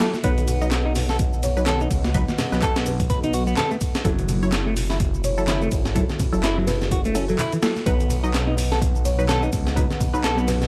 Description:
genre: breakbeat, breaks.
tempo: 126 BPM.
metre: 4/4.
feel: swing 57% on 16ths.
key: unclear.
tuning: A4 = 440 Hz.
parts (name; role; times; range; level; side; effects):
folk marimba with soft mallets; melody; 0.0-10.6 s; A4 to C#5; -32 LUFS; equal; AM radio sound, vintage 12-bit sampler grit, tape echo.
dark analog pad; sustained chords; 0.0-10.7 s; B3 to F#5; -35 LUFS; equal; subtle chorus, sidechain pumping.
filtered dub chord stab; stabs; 0.0-10.2 s; F#3 to D#5; -31 LUFS; equal; phaser, tape echo.
breakbeat sampler-style drum kit; drums; 0.0-10.7 s; hi-hat, kick drum, snare drum; -26 LUFS; equal; studio reverb.
house drum kit; drums; 0.0-10.7 s; handclaps, ride cymbal, shaker; -37 LUFS; equal; overdrive, studio reverb.
congas; percussion; 0.1-10.7 s; none; -35 LUFS; equal; none.
semi-hollow electric guitar; riff; 0.2-10.5 s; E3 to B4; -29 LUFS; equal; tape echo.
phased detuned saw bass; bass; 0.2-10.7 s; F#1 to C#2; -26 LUFS; equal; phaser.
room: little or no reverb.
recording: dry, gritty hardware recording.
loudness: -22 LUFS.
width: mono.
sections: 0.0-10.7 A section.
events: none.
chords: 0.2 B; 4.1 F#m7; 7.9 B.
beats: | 0.24 0.72 1.20 1.67 | 2.15 2.62 3.10 3.58 | 4.05 4.53 5.00 5.48 | 5.96 6.43 6.91 7.38 | 7.86 8.34 8.81 9.29 | 9.77 10.24.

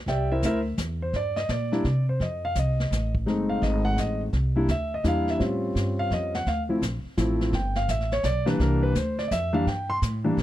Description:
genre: jazz piano trio.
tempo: 169 BPM.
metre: 3/4.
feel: swing 65% on 8ths.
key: C mixolydian.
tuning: A4 = 440 Hz.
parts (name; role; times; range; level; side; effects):
warm concert grand piano; melody; 0.1-10.4 s; E3 to C6; -26 LUFS; equal; none.
upright bass; bass; 0.1-10.4 s; F#1 to C3; -26 LUFS; equal; none.
vintage brush drum kit; drums; 0.1-10.4 s; brushed snare drum, hi-hat, kick drum, snare drum; -32 LUFS; equal; none.
room: small room ambience.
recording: dry, close 1970s-style studio recording.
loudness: -23 LUFS.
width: side -13 dB against mid.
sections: 0.0-10.4 A section.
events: grand piano solo 0.0-10.4.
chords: 0.1 C9; 1.1 Gm; 1.8 Csus2; 2.2 F7; 3.3 F#dim7; 4.3 C9; 5.4 A7alt; 6.5 Dm7; 7.5 Gadd9; 8.6 C9.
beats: | 0.07 0.42 0.78 | 1.13 1.49 1.84 | 2.20 2.55 2.91 | 3.26 3.62 3.97 | 4.33 4.68 5.04 | 5.39 5.75 6.10 | 6.46 6.81 7.17 | 7.52 7.88 8.23 | 8.59 8.95 9.30 | 9.66 10.01 10.37.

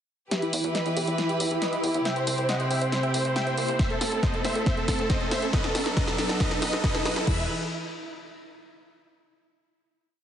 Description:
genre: uplifting trance.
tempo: 138 BPM.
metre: 4/4.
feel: straight.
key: E harmonic minor.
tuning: A4 = 440 Hz.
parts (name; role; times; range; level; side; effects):
supersaw chords; melody; 0.3-7.4 s; E4 to G5; -28 LUFS; equal; sidechain pumping, low-pass filter, tape echo.
rich chamber string section; sustained chords; 0.3-7.5 s; C3 to B4; -31 LUFS; equal; sidechain pumping.
punchy analog drum machine; drums; 0.3-7.4 s; crash cymbal, hi-hat, snare drum; -31 LUFS; equal; overdrive, high-pass filter on snare, sidechain pumping on hats, high-pass filter on hats, sidechain pumping on cymbals, high-pass filter on cymbals.
riser; sound effects; 1.8-7.3 s; none; -36 LUFS; right 2 dB; none.
plucky analog bass; bass; 0.5-7.5 s; F#1 to E2; -37 LUFS; equal; none.
electronic kick drum; drums; 3.8-7.4 s; none; -27 LUFS; equal; none.
room: moderate lush hall reverb, RT60 1.9 s.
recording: heavily compressed radio sound, multiband compression, nothing above 10.3 kHz.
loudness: -24 LUFS.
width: side -9 dB against mid.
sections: 0.3-7.3 build; 7.3-9.0 final chord.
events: build-up 0.3-7.3; drum fill 0.3-7.3; filter sweep on supersaw synth 0.3-7.3; riser 1.8-7.3.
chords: 0.3 Em; 2.1 C; 3.8 Am; 5.5 B; 7.3 N.C..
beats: | 0.32 0.75 1.19 1.62 | 2.06 2.49 2.92 3.36 | 3.79 4.23 4.66 5.10 | 5.53 5.97 6.40 6.84 | 7.27.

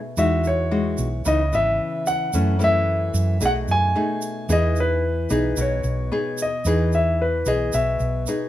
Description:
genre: bossa nova.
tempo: 111 BPM.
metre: 4/4.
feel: straight.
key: E major.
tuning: A4 = 440 Hz.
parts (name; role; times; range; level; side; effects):
nylon-string guitar; accompaniment; 0.0-8.5 s; F#2 to G#4; -25 LUFS; left 2 dB; none.
warm grand piano; melody; 0.2-8.2 s; B4 to G#5; -23 LUFS; left 1 dB; none.
hollow-body short-scale fingered electric bass; bass; 0.2-8.3 s; G#1 to F#2; -22 LUFS; right 1 dB; none.
egg shaker; percussion; 0.2-8.5 s; none; -35 LUFS; right 7 dB; none.
room: little or no reverb.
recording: minimal, uncompressed stereo recording.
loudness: -19 LUFS.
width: side -13 dB against mid.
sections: 0.0-8.5 A section.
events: none.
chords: 0.2 Emaj9; 1.3 C#m9; 2.3 F#m7; 3.4 B6; 4.5 Emaj7.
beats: | 0.18 0.72 1.26 1.80 | 2.33 2.88 3.41 3.95 | 4.49 5.03 5.57 6.11 | 6.65 7.19 7.73 8.27.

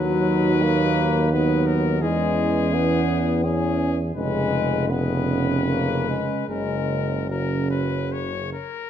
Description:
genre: classical, hymn-like piece for brass band.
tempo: 72-87 BPM.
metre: 3/4.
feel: rubato.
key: unclear.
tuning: A4 = 439 Hz.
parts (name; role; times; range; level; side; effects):
clear cornet; melody; 0.0-8.9 s; G#4 to C#5; -29 LUFS; left 9 dB; none.
mellow French horn section; second line; 0.0-8.6 s; C#4 to D#4; -28 LUFS; right 8 dB; none.
dark trombone; accompaniment; 0.0-8.5 s; C#3 to F#3; -28 LUFS; right 3 dB; none.
warm euphonium; accompaniment; 0.0-8.5 s; F#3 to C#4; -25 LUFS; left 4 dB; none.
warm tuba; bass; 0.0-8.5 s; E#1 to E2; -24 LUFS; equal; none.
room: moderate recital hall reverb, RT60 1.4 s.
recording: none.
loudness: -20 LUFS.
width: side -9 dB against mid.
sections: 0.0-8.9 A section.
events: none.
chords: 0.0 B/D#; 2.0 C#m/E; 4.2 C#7/E#; 6.5 F#.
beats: 0.62 1.32 | 2.04 2.75 3.46 | 4.17 4.89 5.66 | 6.49 7.30 8.12.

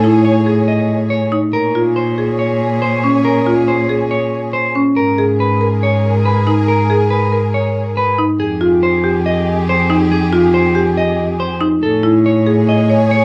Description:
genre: classical, minimalist pattern music.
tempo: 140 BPM.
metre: 4/4.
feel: straight.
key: unclear.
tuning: A4 = 441 Hz.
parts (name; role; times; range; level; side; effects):
clean electric guitar; melody; 0.0-13.2 s; Ab4 to Eb5; -21 LUFS; equal; none.
rich studio string section; sustained chords; 0.0-13.2 s; G4 to C#5; -25 LUFS; equal; none.
marimba with hard mallets; arpeggios; 0.0-13.2 s; Db4 to C#5; -18 LUFS; equal; none.
clear cello; bass; 0.0-13.2 s; F2 to Bb2; -19 LUFS; equal; none.
room: light reverb.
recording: dark, warm production.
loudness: -14 LUFS.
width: mono.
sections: 0.0-13.2 A section.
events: none.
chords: 0.0 Amaj7; 1.5 Bbm7; 5.0 Abmadd9; 8.4 Fmadd9; 11.8 Amaj7.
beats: 0.25 0.68 1.11 | 1.54 1.97 2.40 2.83 | 3.25 3.68 4.11 4.54 | 4.97 5.40 5.83 6.25 | 6.68 7.11 7.54 7.97 | 8.40 8.82 9.25 9.68 | 10.11 10.54 10.97 11.40 | 11.82 12.25 12.68 13.11.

